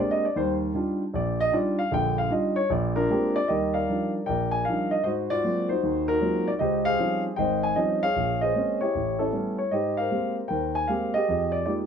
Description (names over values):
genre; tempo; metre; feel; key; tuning
solo jazz; 154 BPM; 4/4; swing 67% on 8ths, rubato; Eb major; A4 = 440 Hz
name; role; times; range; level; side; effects
dark grand piano; solo; 0.0-11.9 s; Ab1 to Ab5; -23 LUFS; equal; none
room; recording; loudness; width
light reverb; close, detailed microphones; -23 LUFS; side -7 dB against mid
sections
0.0-3.5 A section; 3.5-11.9 B section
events
grand piano solo 0.0-3.5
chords
0.4 Ebmaj9; 2.7 Bb13; 3.5 Ebmaj9; 5.1 Ab13; 6.6 Dbmaj9#11; 8.2 Bbm9; 8.9 A9; 9.7 Abmaj9; 11.3 Fm11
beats
| 0.36 0.75 1.14 1.53 | 1.91 2.30 2.70 3.10 | 3.50 3.89 4.28 4.67 | 5.06 5.44 5.83 6.21 | 6.60 6.99 7.38 7.77 | 8.16 8.55 8.94 9.33 | 9.73 10.12 10.51 10.90 | 11.29 11.67